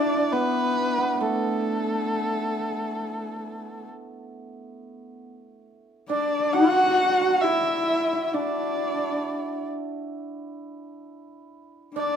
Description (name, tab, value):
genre	chinese traditional, Chinese chamber ensemble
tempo	67 BPM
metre	4/4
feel	rubato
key	D gong mode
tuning	A4 = 440 Hz
part	dark erhu	melody	0.0-12.2 s	A4 to F#5	-26 LUFS	equal	none
part	dark horsehead fiddle	second line	0.0-12.2 s	A3 to F#4	-27 LUFS	left 4 dB	none
part	hammered dulcimer	second line	0.0-12.2 s	A3 to F#4	-29 LUFS	right 4 dB	none
room	moderate recital hall reverb, RT60 1.5 s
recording	minimal, uncompressed stereo recording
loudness	-22 LUFS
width	side -8 dB against mid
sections	0.0-12.0 A section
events	none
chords	none